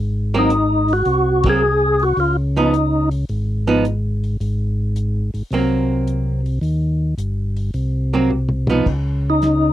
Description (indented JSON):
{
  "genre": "soul jazz organ trio",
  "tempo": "108 BPM",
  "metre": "4/4",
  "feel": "swing 69% on 8ths",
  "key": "Ab mixolydian",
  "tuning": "A4 = 440 Hz",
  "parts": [
    { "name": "tonewheel organ", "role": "bass", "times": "0.0-9.7 s", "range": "G1 to Eb2", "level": "-19 LUFS", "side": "equal", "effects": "slow rotary speaker" },
    { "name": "archtop guitar, miked and amplified", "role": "accompaniment", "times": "0.3-8.9 s", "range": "F3 to Eb4", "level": "-18 LUFS", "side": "right 3 dB", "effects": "none" },
    { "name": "percussive tonewheel organ", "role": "melody", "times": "0.4-3.1, 9.3-9.7 s", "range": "Eb4 to Ab4", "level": "-16 LUFS", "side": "left 1 dB", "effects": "slow rotary speaker, overdrive, chorus vibrato" },
    { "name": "warm soul drum kit", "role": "drums", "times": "0.5-9.6 s", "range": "crash cymbal, hi-hat, kick drum, ride cymbal, snare drum, toms", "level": "-23 LUFS", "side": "equal", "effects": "none" }
  ],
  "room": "little or no reverb",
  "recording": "dry, close 1970s-style studio recording",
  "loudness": "-16 LUFS",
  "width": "side -12 dB against mid",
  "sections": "0.0-9.7 A section",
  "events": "band accent 1.3; drum fill 8.3-8.9",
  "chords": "0.0 Ab9; 2.2 Db9; 4.4 Ab9; 8.9 Dbsus2"
}